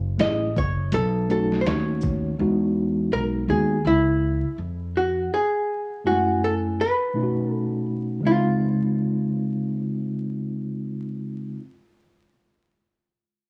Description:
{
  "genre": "hip hop, jazz-hop",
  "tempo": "82 BPM",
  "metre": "4/4",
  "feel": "swing 59% on 16ths",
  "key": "Db major",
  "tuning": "A4 = 440 Hz",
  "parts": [
    { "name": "upright bass", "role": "bass", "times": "0.0-5.3 s", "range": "Gb1 to F2", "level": "-28 LUFS", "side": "equal", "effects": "none" },
    { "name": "archtop guitar, miked and amplified", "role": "melody", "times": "0.2-11.6 s", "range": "E4 to Eb5", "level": "-26 LUFS", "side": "equal", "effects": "none" },
    { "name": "mellow tine electric piano", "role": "accompaniment", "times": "0.2-11.6 s", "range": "Gb2 to Ab5", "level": "-26 LUFS", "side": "equal", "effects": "none" },
    { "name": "boom bap sampler-style drum kit", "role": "drums", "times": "0.2-2.2 s", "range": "hi-hat, kick drum, shaker, snare drum", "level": "-31 LUFS", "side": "equal", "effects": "cassette tape" }
  ],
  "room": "light reverb",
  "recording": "home recording on cassette, vinyl crackle, small room ambience",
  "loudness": "-24 LUFS",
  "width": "mono",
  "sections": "0.0-8.2 A section; 8.2-11.2 B section",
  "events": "none",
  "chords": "0.0 Gbm7; 0.9 Cb9; 2.4 Emaj9; 5.3 Gbm7; 6.8 Cb9; 8.2 Dbmaj9"
}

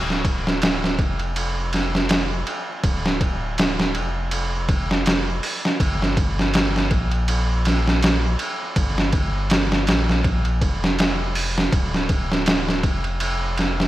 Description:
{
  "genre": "trip hop",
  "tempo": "81 BPM",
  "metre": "4/4",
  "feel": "swing 56% on 16ths",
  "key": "D minor",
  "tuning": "A4 = 440 Hz",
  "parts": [
    { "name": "soft dub sub bass", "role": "bass", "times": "0.0-13.9 s", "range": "D1 to Bb1", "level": "-24 LUFS", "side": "equal", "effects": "none" },
    { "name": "trip hop sampler-style drum kit", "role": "drums", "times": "0.1-13.9 s", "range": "hi-hat, kick drum, ride cymbal, snare drum", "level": "-20 LUFS", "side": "right 1 dB", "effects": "overdrive" }
  ],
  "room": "little or no reverb",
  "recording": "vinyl crackle",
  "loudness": "-18 LUFS",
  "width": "side -15 dB against mid",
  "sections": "0.0-13.9 A section",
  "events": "none",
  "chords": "none"
}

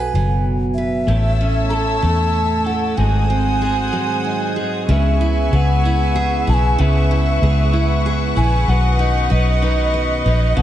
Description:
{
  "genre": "six-eight pop ballad",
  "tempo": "63 BPM (dotted quarters)",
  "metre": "6/8",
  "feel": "straight",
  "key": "C# minor from 4.9 s",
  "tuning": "A4 = 440 Hz",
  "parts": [
    { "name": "breathy mellow alto ocarina", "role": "melody", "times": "0.0-10.6 s", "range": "D#5 to A#5", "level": "-23 LUFS", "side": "equal", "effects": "diffuse ambient delay" },
    { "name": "picked steel-string acoustic guitar", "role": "accompaniment", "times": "0.0-10.6 s", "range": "G#2 to B4", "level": "-23 LUFS", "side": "right 3 dB", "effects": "none" },
    { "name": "vintage muted fingered electric bass", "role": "bass", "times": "0.0-10.6 s", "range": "F#1 to E2", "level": "-17 LUFS", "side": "equal", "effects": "none" },
    { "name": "warm chamber string section", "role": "sustained chords", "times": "1.1-10.6 s", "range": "B4 to E6", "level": "-25 LUFS", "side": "left 1 dB", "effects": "none" },
    { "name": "twelve-string electric guitar", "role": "arpeggios", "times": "1.1-10.6 s", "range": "G#2 to B4", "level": "-26 LUFS", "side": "equal", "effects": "spring reverb, diffuse ambient delay" }
  ],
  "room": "moderate plate reverb, RT60 2.8 s",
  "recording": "dreamy mix soaked in reverb, nothing above 10.7 kHz",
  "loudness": "-15 LUFS",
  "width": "side -12 dB against mid",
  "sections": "0.0-4.9 A section; 4.9-10.6 B section",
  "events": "break 3.9-4.9",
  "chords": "0.0 B5; 1.1 A; 3.0 G#7; 4.9 C#m7; 8.7 Badd9"
}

